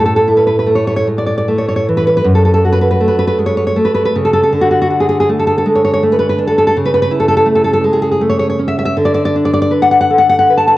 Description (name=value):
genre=romantic piece for solo classical guitar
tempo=80 BPM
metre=3/4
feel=rubato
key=A major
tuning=A4 = 440 Hz
part: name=nylon-string guitar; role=solo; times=0.0-10.8 s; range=F#2 to A5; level=-10 LUFS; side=equal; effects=cassette tape, tape echo
room=moderate booth ambience, RT60 0.2 s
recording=home recording on cassette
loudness=-10 LUFS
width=side -16 dB against mid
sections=0.0-10.8 A section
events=none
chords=0.0 A5; 2.2 F#m; 4.5 D; 6.8 A/C#; 9.0 Bm/D